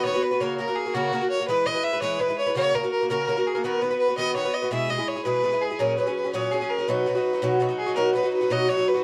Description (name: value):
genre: celtic folk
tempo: 111 BPM (dotted quarters)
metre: 6/8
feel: straight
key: B major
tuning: A4 = 442 Hz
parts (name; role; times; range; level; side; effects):
- rich fiddle; melody; 0.0-9.0 s; F#4 to E5; -27 LUFS; equal; none
- Irish bouzouki; accompaniment; 0.0-9.0 s; A#2 to B4; -27 LUFS; equal; none
room: light reverb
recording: dark, warm production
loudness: -24 LUFS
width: mono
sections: 0.0-8.0 A section; 8.0-9.0 A section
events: none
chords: 0.4 F#; 1.5 E; 2.6 F#; 3.6 B; 4.7 E; 5.8 F#add9; 6.9 B